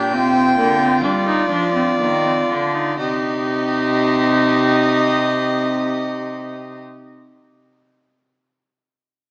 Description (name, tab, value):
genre	classical, baroque-style fugue for string quartet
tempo	58-68 BPM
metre	4/4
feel	straight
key	C minor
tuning	A4 = 435 Hz
part	warm violin	melody	0.0-6.8 s	D5 to G5	-24 LUFS	equal	none
part	warm violin	second line	0.0-6.8 s	F4 to G4	-26 LUFS	equal	none
part	rich viola	accompaniment	0.0-6.8 s	Bb3 to Eb4	-24 LUFS	equal	none
part	rich cello	bass	0.0-6.8 s	Bb2 to G3	-24 LUFS	equal	none
room	wet scoring stage reverb, RT60 2.2 s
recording	small speaker sound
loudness	-18 LUFS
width	mono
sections	0.0-3.0 A section; 3.0-7.1 B section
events	slowing down 0.0-3.0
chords	0.0 G7sus4; 1.0 G7(no3); 3.0 Cm